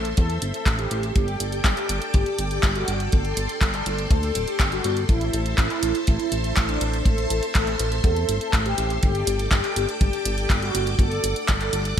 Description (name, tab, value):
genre	italo disco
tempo	122 BPM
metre	4/4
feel	straight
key	unclear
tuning	A4 = 443 Hz
part	mellow synth brass	melody	0.0-12.0 s	D4 to A4	-27 LUFS	equal	chorus, phaser, digital delay
part	string machine, full ensemble	sustained chords	0.0-12.0 s	A4 to D6	-30 LUFS	equal	ensemble chorus
part	chorused synth bass	bass	0.0-12.0 s	D1 to E2	-26 LUFS	equal	none
part	house drum kit	drums	0.1-12.0 s	handclaps, hi-hat	-28 LUFS	equal	overdrive, gated reverb
part	kick drum	drums	0.2-12.0 s	none	-20 LUFS	equal	none
room	light reverb, studio ambience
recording	bright 1980s-style digital production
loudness	-20 LUFS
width	side -9 dB against mid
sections	0.0-12.0 A section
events	none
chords	0.0 Am; 1.2 Gsus2; 5.1 Am; 9.0 Gsus2